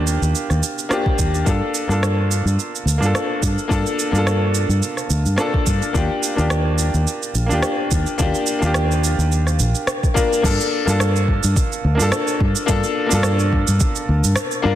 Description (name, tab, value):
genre	sunset chillout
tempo	107 BPM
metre	4/4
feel	swing 55% on 16ths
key	G minor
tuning	A4 = 440 Hz
part	clear grand piano	accompaniment	0.0-14.8 s	Bb3 to Bb4	-21 LUFS	moving between left 4 dB and right 3 dB	auto-pan, low-pass filter, digital delay
part	fingered electric bass	bass	0.0-14.8 s	Bb1 to G2	-18 LUFS	equal	none
part	smooth R&B drum kit	drums	0.1-14.6 s	crash cymbal, rim click, shaker	-25 LUFS	right 3 dB	soft clipping on snare
part	electronic kick drum	drums	1.1-13.9 s	none	-20 LUFS	equal	none
room	light reverb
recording	dense, heavily limited modern master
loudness	-16 LUFS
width	side -12 dB against mid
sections	0.0-10.4 A section; 10.4-14.8 B section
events	none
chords	0.0 Ebmaj7; 1.5 Gm7; 6.0 Ebmaj7; 10.4 Gm7